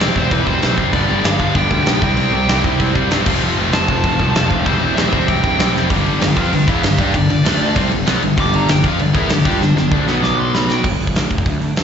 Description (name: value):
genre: punk rock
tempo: 194 BPM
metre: 4/4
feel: straight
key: G major from 5.9 s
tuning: A4 = 438 Hz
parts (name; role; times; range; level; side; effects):
- dark smooth lead guitar; melody; 0.0-10.9 s; D4 to D6; -22 LUFS; right 1 dB; overdrive, slapback echo, ping-pong delay
- distorted electric guitar; riff; 0.0-10.8 s; F2 to G4; -24 LUFS; right 1 dB; overdrive, slapback echo
- tight distorted guitar; riff; 0.0-10.8 s; F2 to G4; -20 LUFS; left 12 dB; distortion, slapback echo
- tight distorted guitar; riff; 0.0-10.8 s; G2 to G4; -22 LUFS; right 9 dB; distortion
- fuzz picked electric bass; bass; 0.0-11.8 s; E1 to G2; -19 LUFS; equal; overdrive
- big rock drum kit; drums; 0.0-11.8 s; crash cymbal, hi-hat, kick drum, snare drum; -18 LUFS; right 1 dB; none
room: little or no reverb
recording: live gig heard through the venue's PA, recital hall reverb, nothing above 7.8 kHz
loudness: -13 LUFS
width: side -7 dB against mid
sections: 0.0-5.9 A section; 5.9-10.8 B section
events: drum fill 5.7, 9.6-10.8; lead electric guitar solo 5.9-10.8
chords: 0.0 C/E; 0.9 G; 2.0 C; 3.3 F; 4.7 C/E; 5.9 G; 7.4 D5; 7.8 G; 10.1 B5; 10.8 G5